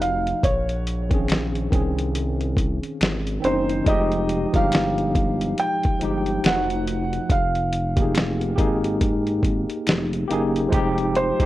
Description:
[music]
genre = lo-fi hip hop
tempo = 70 BPM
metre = 4/4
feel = swing 58% on 16ths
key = F minor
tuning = A4 = 440 Hz
[part]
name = felt-muted upright piano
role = melody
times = 0.0-11.5 s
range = C5 to G5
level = -25 LUFS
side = right 2 dB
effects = tape echo
[part]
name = tine electric piano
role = accompaniment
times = 0.0-11.5 s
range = Eb3 to Ab4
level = -25 LUFS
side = left 1 dB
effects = overdrive, fast stereo tremolo, cassette tape
[part]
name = smooth synth bass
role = bass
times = 0.0-11.3 s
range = F1 to C2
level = -25 LUFS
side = equal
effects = none
[part]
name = boom bap sampler-style drum kit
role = drums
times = 0.0-11.5 s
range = hi-hat, kick drum, snare drum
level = -22 LUFS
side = equal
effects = none
[part]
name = finger snaps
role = percussion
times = 1.3-10.1 s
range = none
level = -34 LUFS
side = left 3 dB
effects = none
[sound]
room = little or no reverb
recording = worn, warbling old tape, cassette tape, warbly pitch drift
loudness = -20 LUFS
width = side -15 dB against mid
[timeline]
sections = 0.0-10.7 A section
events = none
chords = 0.4 Bbm11; 3.9 Fm9; 6.4 F7b9; 7.3 Fm11; 10.7 Fm9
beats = | 0.44 1.30 2.15 3.01 | 3.87 4.72 5.58 6.44 | 7.30 8.15 9.01 9.87 | 10.72

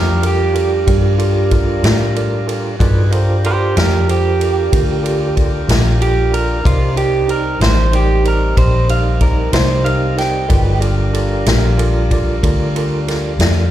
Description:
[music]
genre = slow blues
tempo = 62 BPM (dotted quarters)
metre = 12/8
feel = straight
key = G minor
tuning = A4 = 438 Hz
[part]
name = electric guitar through a small old amp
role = second line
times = 0.0-10.8 s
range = F4 to G5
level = -18 LUFS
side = right 4 dB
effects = slapback echo
[part]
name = overdriven tine electric piano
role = accompaniment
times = 0.0-13.6 s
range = Eb4 to D5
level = -23 LUFS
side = right 3 dB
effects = fast tremolo, slapback echo
[part]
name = tonewheel organ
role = sustained chords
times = 0.0-13.7 s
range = F#3 to B4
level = -23 LUFS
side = left 1 dB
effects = slow rotary speaker
[part]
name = vintage muted fingered electric bass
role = bass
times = 0.0-13.7 s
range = G1 to A2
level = -16 LUFS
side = equal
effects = none
[part]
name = swinging big-band drum kit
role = drums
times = 0.2-13.6 s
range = kick drum, ride cymbal, snare drum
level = -19 LUFS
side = equal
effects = none
[sound]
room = little or no reverb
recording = live gig heard through the venue's PA, recital hall reverb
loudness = -12 LUFS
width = side -12 dB against mid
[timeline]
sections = 0.0-13.7 A section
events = clean electric guitar solo 0.0-13.7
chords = 0.0 Gm7; 6.7 Cm7; 10.5 Gm7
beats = 0.87 1.84 | 2.80 3.76 4.72 5.69 | 6.65 7.61 8.58 9.54 | 10.50 11.47 12.43 13.40

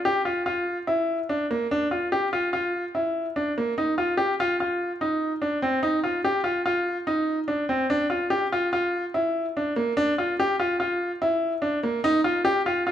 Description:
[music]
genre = contemporary instrumental, contemporary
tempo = 145 BPM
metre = 5/4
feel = straight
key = unclear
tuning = A4 = 441 Hz
[part]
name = clear grand piano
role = solo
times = 0.1-12.9 s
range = Bb3 to G4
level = -22 LUFS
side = equal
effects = none
[sound]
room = moderate recital hall reverb, RT60 1.4 s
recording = minimal, uncompressed stereo recording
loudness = -23 LUFS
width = side -10 dB against mid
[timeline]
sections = 0.0-12.9 A section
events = none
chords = none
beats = 0.06 0.47 0.88 1.30 | 1.71 2.12 2.53 2.95 3.36 | 3.77 4.19 4.60 5.01 5.42 | 5.84 6.25 6.67 7.08 7.49 | 7.91 8.32 8.73 9.15 9.56 | 9.97 10.39 10.80 11.22 11.63 | 12.04 12.46 12.87

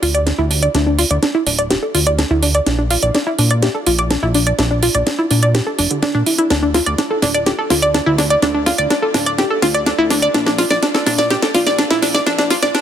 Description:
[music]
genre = progressive house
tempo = 125 BPM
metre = 4/4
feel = straight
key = unclear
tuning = A4 = 440 Hz
[part]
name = analog pluck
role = arpeggios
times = 0.0-12.8 s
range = D3 to D5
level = -16 LUFS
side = equal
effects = chorus, tape echo
[part]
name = fat analog bass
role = bass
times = 0.0-12.7 s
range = D1 to Bb2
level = -20 LUFS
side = equal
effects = none
[part]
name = house drum kit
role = drums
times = 0.0-12.8 s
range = hi-hat, snare drum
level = -18 LUFS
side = right 1 dB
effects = none
[sound]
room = light reverb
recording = dense, heavily limited modern master, high-pass filter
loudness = -13 LUFS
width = side -9 dB against mid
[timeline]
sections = 0.0-12.8 A section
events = build-up 0.0-12.8; drum fill 0.0-12.8; filter sweep on synth pluck 0.0-12.8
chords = 0.0 N.C.; 2.7 Bb; 6.5 N.C.; 10.3 Bb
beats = 0.27 | 0.75 1.23 1.71 2.19 | 2.67 3.15 3.63 4.11 | 4.59 5.07 5.55 6.03 | 6.51 6.99 7.47 7.95 | 8.43 8.91 9.39 9.87 | 10.35 10.83 11.31 11.79 | 12.27 12.75

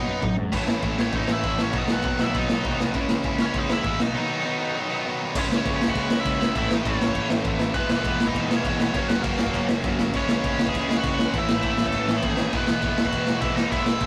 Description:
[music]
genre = punk rock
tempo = 200 BPM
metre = 4/4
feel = straight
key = unclear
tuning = A4 = 441 Hz
[part]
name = nasal lead guitar with a parked wah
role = melody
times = 0.0-14.1 s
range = A#3 to A5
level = -31 LUFS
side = equal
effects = overdrive
[part]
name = biting overdriven guitar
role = riff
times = 0.0-14.1 s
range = A2 to G#4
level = -37 LUFS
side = equal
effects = none
[part]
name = distorted electric guitar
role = riff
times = 0.0-14.1 s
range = F#2 to E4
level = -31 LUFS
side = equal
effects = overdrive
[part]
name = fuzz picked electric bass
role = bass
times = 0.0-14.1 s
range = E1 to F#2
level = -34 LUFS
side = equal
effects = overdrive
[part]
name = raw garage drum kit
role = drums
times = 0.2-14.1 s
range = crash cymbal, kick drum, ride cymbal, snare drum, toms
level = -27 LUFS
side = equal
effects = none
[part]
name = tight distorted guitar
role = riff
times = 0.5-14.1 s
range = E2 to C#4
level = -34 LUFS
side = equal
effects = distortion
[sound]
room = light reverb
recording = rough rehearsal-room recording, warm saturation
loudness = -24 LUFS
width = mono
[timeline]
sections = 0.5-5.4 A section; 5.4-14.1 B section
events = drum fill 0.0-0.5; break 4.2-5.4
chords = 0.0 B; 0.5 A; 1.7 B; 3.0 C#m; 4.0 B; 5.4 C#m; 6.6 A; 7.8 E; 8.9 F#; 10.1 C#m; 11.3 A; 12.5 E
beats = 0.24 | 0.54 0.84 1.15 1.45 | 1.75 2.05 2.35 2.65 | 2.95 3.25 3.56 3.86 | 4.16 4.46 4.76 5.06 | 5.36 5.66 5.96 6.26 | 6.56 6.86 7.16 7.46 | 7.75 8.05 8.35 8.65 | 8.95 9.25 9.55 9.85 | 10.15 10.45 10.74 11.04 | 11.34 11.64 11.94 12.24 | 12.54 12.84 13.13 13.43 | 13.73 14.03

